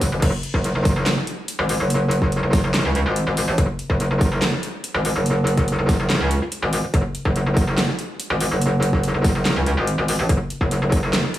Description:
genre	heavy wobble dubstep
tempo	143 BPM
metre	4/4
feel	half-time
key	F# minor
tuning	A4 = 441 Hz
part	metallic wobble bass	bass	0.0-11.2 s	F#1 to C#2	-19 LUFS	equal	chorus, overdrive
part	big-room dance drum kit	drums	0.0-11.4 s	crash cymbal, handclaps, hi-hat, snare drum	-25 LUFS	equal	none
part	electronic kick drum	drums	0.0-11.0 s	none	-21 LUFS	equal	none
room	little or no reverb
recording	small room ambience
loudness	-18 LUFS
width	side -13 dB against mid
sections	0.0-11.4 A section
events	none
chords	none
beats	| 0.22 0.64 1.06 1.48 | 1.90 2.32 2.74 3.16 | 3.58 4.00 4.42 4.84 | 5.26 5.68 6.10 6.52 | 6.94 7.36 7.78 8.20 | 8.62 9.04 9.46 9.87 | 10.29 10.71 11.13

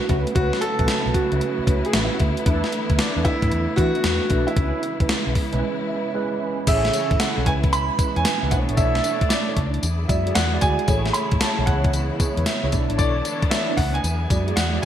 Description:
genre	R&B, new jack swing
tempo	114 BPM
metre	4/4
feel	swing 66% on 16ths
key	unclear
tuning	A4 = 439 Hz
part	warm concert grand piano	melody	0.0-14.8 s	D4 to B5	-25 LUFS	right 1 dB	wide subtle chorus, digital delay
part	mellow tine electric piano	accompaniment	0.0-14.8 s	G#3 to B5	-27 LUFS	right 4 dB	ensemble chorus
part	warm studio string section	sustained chords	0.0-14.8 s	B2 to G#4	-31 LUFS	left 2 dB	none
part	mellow synth brass	stabs	0.1-14.8 s	C#4 to D5	-32 LUFS	left 1 dB	chorus, phaser, digital delay
part	vintage muted fingered electric bass	bass	0.1-14.8 s	G#1 to E3	-24 LUFS	equal	none
part	gated 80s digital drum machine	drums	0.1-14.8 s	crash cymbal, hi-hat, kick drum, snare drum, tambourine	-22 LUFS	left 1 dB	gated reverb, gated reverb snare
room	light reverb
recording	bright 1980s-style digital production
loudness	-19 LUFS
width	side -10 dB against mid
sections	0.0-6.7 A section; 6.7-14.8 B section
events	break 5.6-6.7; tine electric piano fill 5.6-6.7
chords	0.1 A69; 2.5 E7sus4; 4.6 C#m7; 6.7 Amaj7; 7.5 C#m7; 8.5 Bm11; 9.8 E9; 10.9 Amaj7; 11.7 C#m7; 12.7 Bm11; 14.0 E9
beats	| 0.36 0.88 1.41 1.94 | 2.46 2.99 3.52 4.04 | 4.57 5.09 5.62 6.15 | 6.67 7.20 7.73 8.25 | 8.78 9.30 9.83 10.36 | 10.88 11.41 11.94 12.46 | 12.99 13.52 14.04 14.57

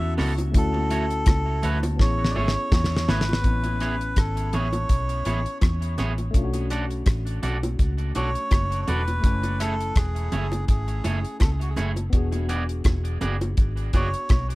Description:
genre	lovers rock reggae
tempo	83 BPM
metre	4/4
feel	swing 56% on 16ths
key	A major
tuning	A4 = 440 Hz
part	melodica	melody	0.0-14.5 s	F#4 to E5	-30 LUFS	right 1 dB	tape echo
part	tine electric piano	accompaniment	0.0-14.6 s	A3 to G#5	-33 LUFS	left 3 dB	lush chorus
part	vintage muted fingered electric bass	bass	0.0-14.6 s	E1 to E2	-26 LUFS	equal	none
part	electric guitar at the edge of break-up	stabs	0.2-14.1 s	A3 to D5	-33 LUFS	right 3 dB	tape echo
part	damped 70s drum kit	drums	0.2-14.6 s	hi-hat, kick drum, rim click, snare drum	-22 LUFS	equal	none
part	bongos	percussion	0.2-14.5 s	none	-33 LUFS	right 1 dB	none
room	little or no reverb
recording	none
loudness	-21 LUFS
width	side -20 dB against mid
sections	0.0-3.4 A section; 3.4-14.6 B section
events	drum fill 2.0-3.4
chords	0.0 A69; 0.5 Dmaj9; 2.0 Amaj9; 6.3 Bm7; 9.2 F#m9; 12.1 E9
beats	| 0.55 1.27 1.99 2.72 | 3.44 4.17 4.89 5.61 | 6.34 7.06 7.79 8.51 | 9.23 9.96 10.68 11.40 | 12.13 12.85 13.57 14.30

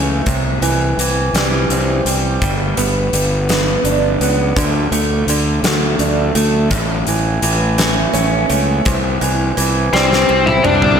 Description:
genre	quiet-loud alternative rock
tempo	56 BPM (dotted quarters)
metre	6/8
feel	straight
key	unclear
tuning	A4 = 442 Hz
part	picked acoustic archtop guitar	arpeggios	0.0-11.0 s	A2 to D4	-18 LUFS	right 4 dB	none
part	fuzz fingered electric bass	bass	0.0-11.0 s	G1 to D2	-18 LUFS	left 1 dB	overdrive
part	huge arena drum kit	drums	0.3-11.0 s	hi-hat, kick drum, snare drum, toms	-19 LUFS	left 1 dB	none
part	high-gain lead guitar	melody	9.9-11.0 s	C4 to E5	-13 LUFS	left 5 dB	distortion
room	wet scoring stage reverb, RT60 1.7 s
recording	big arena sound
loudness	-13 LUFS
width	side -7 dB against mid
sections	0.0-11.0 A section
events	drum fill 9.9-11.0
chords	0.3 C; 2.4 G; 4.6 D5; 6.7 A; 8.9 C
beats	| 0.27 1.34 | 2.42 3.49 | 4.56 5.64 | 6.71 7.78 | 8.85 9.93 | 11.00

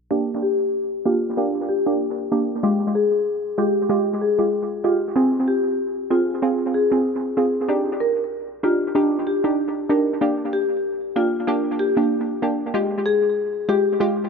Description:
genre	dancehall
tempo	95 BPM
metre	4/4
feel	swing 56% on 16ths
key	unclear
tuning	A4 = 441 Hz
part	glassy wavetable pluck	accompaniment	0.1-14.3 s	Ab3 to Ab4	-21 LUFS	right 1 dB	chorus, low-pass filter, analog delay
part	marimba with soft mallets	melody	0.4-13.8 s	F4 to Bb4	-22 LUFS	left 2 dB	low-pass filter, analog delay
room	moderate spring reverb, RT60 2.9 s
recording	echo-heavy mix, nothing above 7.5 kHz, faint mains hum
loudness	-19 LUFS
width	side -5 dB against mid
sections	0.1-14.3 A section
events	filter sweep 0.1-14.3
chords	0.1 Bb6; 2.6 Fmadd9; 5.2 Ab6; 7.7 Ebmaj7; 10.2 Bb6; 12.7 Fmadd9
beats	| 0.11 0.74 1.37 2.00 | 2.63 3.27 3.90 4.53 | 5.16 5.79 6.42 7.06 | 7.69 8.32 8.95 9.58 | 10.21 10.85 11.48 12.11 | 12.74 13.37 14.00

